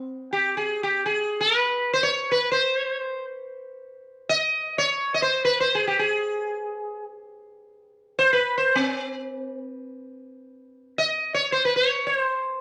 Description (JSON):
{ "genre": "indian classical", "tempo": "free time", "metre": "none", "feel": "none", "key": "C raga todi", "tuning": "A4 = 440 Hz", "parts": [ { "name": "sitar", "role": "solo", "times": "0.3-12.6 s", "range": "C4 to Eb5", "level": "-24 LUFS", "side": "equal", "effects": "none" } ], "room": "wet studio reverb, RT60 0.7 s", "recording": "none", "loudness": "-24 LUFS", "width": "mono", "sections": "0.0-10.6 A section; 10.6-12.6 A section", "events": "none", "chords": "none" }